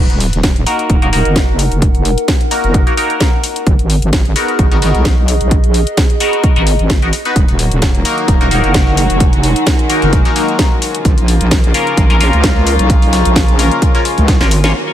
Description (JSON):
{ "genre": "bass house", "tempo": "130 BPM", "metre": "4/4", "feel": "swing 55% on 16ths", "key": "Eb minor", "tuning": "A4 = 440 Hz", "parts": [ { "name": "wobble bass", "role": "bass", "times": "0.0-14.7 s", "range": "Eb1 to Db2", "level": "-14 LUFS", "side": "equal", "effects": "chorus, overdrive, sidechain pumping" }, { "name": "warbly tape-like pad", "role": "texture", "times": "0.7-14.9 s", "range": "Eb4 to Db6", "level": "-20 LUFS", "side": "equal", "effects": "chorus, built-in reverb, sidechain pumping" }, { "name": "house drum kit", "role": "drums", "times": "0.1-14.7 s", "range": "hi-hat, snare drum", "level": "-19 LUFS", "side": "left 1 dB", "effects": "low-pass filter on hats, low-pass filter on snare, low-pass filter on cymbals, low-pass filter on room" }, { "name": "electronic kick drum", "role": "drums", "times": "0.4-14.4 s", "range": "none", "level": "-12 LUFS", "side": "equal", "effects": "none" }, { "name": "band-passed chord stab", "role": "stabs", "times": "0.7-14.7 s", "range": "Bb3 to Db5", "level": "-18 LUFS", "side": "left 2 dB", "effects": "phaser, sidechain pumping, digital delay" }, { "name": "warm studio string section", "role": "sustained chords", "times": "7.4-14.9 s", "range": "Db3 to Gb4", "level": "-20 LUFS", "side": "left 1 dB", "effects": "sidechain pumping" }, { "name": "breakbeat sampler-style drum kit", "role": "drums", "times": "7.4-14.6 s", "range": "hi-hat, snare drum", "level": "-28 LUFS", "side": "equal", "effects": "none" } ], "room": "digital ambience", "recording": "none", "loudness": "-10 LUFS", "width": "side -11 dB against mid", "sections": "0.0-14.7 A section", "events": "filter sweep on wobble bass 0.0-14.7; drum fill 14.3-14.7; band accent 14.6", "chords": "0.0 Ebm; 3.7 Abm7; 7.4 Ebm; 11.1 Bbm" }